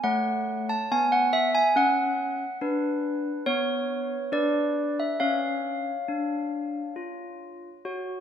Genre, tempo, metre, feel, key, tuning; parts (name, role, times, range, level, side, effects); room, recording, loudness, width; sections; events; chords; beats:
classical, tune for handbells; 70 BPM; 3/4; straight; A4 = 440 Hz
handbells; solo; 0.0-8.2 s; A3 to A5; -24 LUFS; equal
moderate concert hall reverb, RT60 2.4 s; minimal, uncompressed stereo recording; -24 LUFS; side -9 dB against mid
0.0-8.2 A section
0.1 F#m/A; 2.6 Bm/D; 4.3 Bmadd11/D; 5.2 C#
| 0.05 0.90 1.75 | 2.60 3.45 4.31 | 5.20 6.08 6.97 | 7.85